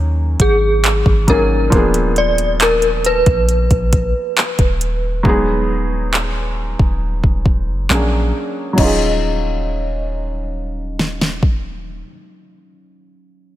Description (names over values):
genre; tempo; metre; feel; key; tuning
contemporary R&B; 68 BPM; 4/4; straight; Eb minor; A4 = 440 Hz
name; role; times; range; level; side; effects
felt-muted upright piano; accompaniment; 0.0-13.6 s; F3 to Ab4; -21 LUFS; right 1 dB; low-pass filter
soft 808-style bass; bass; 0.0-12.0 s; Eb1 to Eb2; -19 LUFS; equal; none
synth chime; melody; 0.4-12.0 s; Ab4 to Eb5; -18 LUFS; left 1 dB; ensemble chorus, tremolo, low-pass filter, ping-pong delay
smooth R&B drum kit; drums; 0.4-11.6 s; crash cymbal, handclaps, hi-hat, kick drum, snare drum; -16 LUFS; equal; none
room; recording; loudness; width
light reverb; none; -14 LUFS; side -14 dB against mid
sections
0.0-1.7 A section; 1.7-8.8 B section; 8.8-12.3 C section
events
filter sweep 1.7-8.8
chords
0.0 Ab9sus4; 1.7 Bb7b9/Eb; 5.2 Abm7/Eb; 7.9 Bb7alt; 8.8 Ebm11